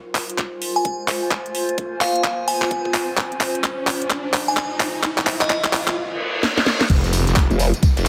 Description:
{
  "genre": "bass house",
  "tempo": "129 BPM",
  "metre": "4/4",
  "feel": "swing 62% on 16ths",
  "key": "F minor",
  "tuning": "A4 = 441 Hz",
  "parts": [
    { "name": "riser, reverse cymbal and downlifter", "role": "sound effects", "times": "0.0-8.1 s", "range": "none", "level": "-31 LUFS", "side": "equal", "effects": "none" },
    { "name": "warbly tape-like pad", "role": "texture", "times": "0.0-6.0 s", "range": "Eb4 to Ab5", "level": "-29 LUFS", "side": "equal", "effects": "chorus, built-in reverb, phaser, sidechain pumping" },
    { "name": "garage drum kit", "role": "drums", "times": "0.2-8.1 s", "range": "crash cymbal, handclaps, hi-hat, snare drum, tambourine", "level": "-24 LUFS", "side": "equal", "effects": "none" },
    { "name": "electronic kick drum", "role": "drums", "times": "0.4-7.9 s", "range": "none", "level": "-21 LUFS", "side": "equal", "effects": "high-pass filter on kick" },
    { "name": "glassy synth bell", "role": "melody", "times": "0.8-5.6 s", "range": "Eb5 to Ab5", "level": "-27 LUFS", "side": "equal", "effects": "chorus, digital delay" },
    { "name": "phased detuned saw bass", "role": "bass", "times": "6.9-8.1 s", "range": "F1", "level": "-22 LUFS", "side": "equal", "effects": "phaser, overdrive, sidechain pumping" },
    { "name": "loose indie drum kit", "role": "drums", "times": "6.9-8.1 s", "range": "hi-hat, snare drum", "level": "-37 LUFS", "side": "equal", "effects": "none" },
    { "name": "formant-sweep wobble bass", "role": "bass", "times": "7.5-7.7 s", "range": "F1", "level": "-19 LUFS", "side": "equal", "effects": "chorus, overdrive, sidechain pumping" }
  ],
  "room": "light reverb",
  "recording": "heavily compressed radio sound",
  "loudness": "-21 LUFS",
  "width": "mono",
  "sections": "0.0-6.9 A section; 6.9-8.1 B section",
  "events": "build-up 0.0-6.9; drum fill 0.0-6.0, 6.4-6.9; riser 0.0-6.0; reverse cymbal 6.0-6.9; drop 6.9-8.1",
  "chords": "0.0 Fm; 6.9 N.C.",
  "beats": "0.38 0.85 | 1.31 1.78 2.25 2.71 | 3.17 3.64 4.11 4.57 | 5.04 5.50 5.97 6.43 | 6.90 7.36 7.83"
}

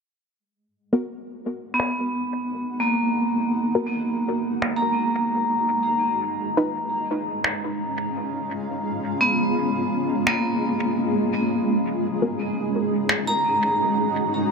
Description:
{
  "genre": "ambient dub",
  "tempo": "85 BPM",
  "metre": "4/4",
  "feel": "swing 54% on 16ths",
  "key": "G# dorian",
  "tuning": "A4 = 440 Hz",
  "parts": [
    { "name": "granular cloud pad", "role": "sustained chords", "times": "1.5-14.5 s", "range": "G#3 to F#5", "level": "-26 LUFS", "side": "right 1 dB", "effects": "built-in reverb" },
    { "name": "filtered dub chord stab", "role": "stabs", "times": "0.9-6.7, 12.2-12.4 s", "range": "B3 to B4", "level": "-28 LUFS", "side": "left 1 dB", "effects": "chorus, dub echo" },
    { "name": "vibraphone with hard mallets", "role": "arpeggios", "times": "1.7-14.5 s", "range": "A#3 to A#5", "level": "-23 LUFS", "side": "equal", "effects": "low-pass filter, dub echo" },
    { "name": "electronic finger snaps", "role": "drums", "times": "1.8-13.2 s", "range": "none", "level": "-26 LUFS", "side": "equal", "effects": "low-pass filter on snare, low-pass filter on room, dub echo" }
  ],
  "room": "wet huge ambient reverb, RT60 4.5 s",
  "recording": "none",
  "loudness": "-21 LUFS",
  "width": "side -5 dB against mid",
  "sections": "0.4-14.5 A section",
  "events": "fade-in on ambient pad 0.4-14.5; filter sweep on drum 0.4-14.5; filter sweep on vibraphone 0.4-14.5",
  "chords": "0.4 G#m7; 6.0 C#7; 11.7 G#7(no3)",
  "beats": "| 0.39 1.09 1.80 2.50 | 3.21 3.91 4.62 5.33 | 6.03 6.74 7.44 8.15 | 8.86 9.56 10.27 10.97 | 11.68 12.38 13.09 13.80 | 14.50"
}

